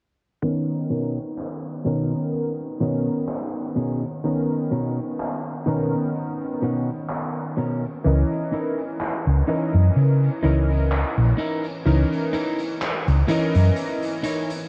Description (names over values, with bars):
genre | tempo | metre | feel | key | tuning
vaporwave | 63 BPM | 4/4 | swing 55% on 16ths | unclear | A4 = 439 Hz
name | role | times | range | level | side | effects
clear electric grand piano | accompaniment | 0.4-14.7 s | D#3 to D#5 | -27 LUFS | equal | analog chorus, vintage 12-bit sampler grit, analog delay
raw garage drum kit | drums | 0.4-14.7 s | handclaps, hi-hat | -36 LUFS | equal | gated reverb
clean electric guitar | riff | 0.9-14.5 s | B2 to C#5 | -31 LUFS | equal | subtle chorus, vintage 12-bit sampler grit, low-pass filter, analog delay
hollow-body short-scale fingered electric bass | bass | 8.1-13.7 s | A#1 to C#3 | -20 LUFS | equal | none
room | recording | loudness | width
light reverb, studio ambience | cassette tape, low-pass filter | -23 LUFS | mono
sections
0.4-14.7 A section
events
filter sweep on clean electric guitar 0.4-14.7; filter sweep 0.4-14.7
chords
0.4 Bmaj9; 8.1 C#m69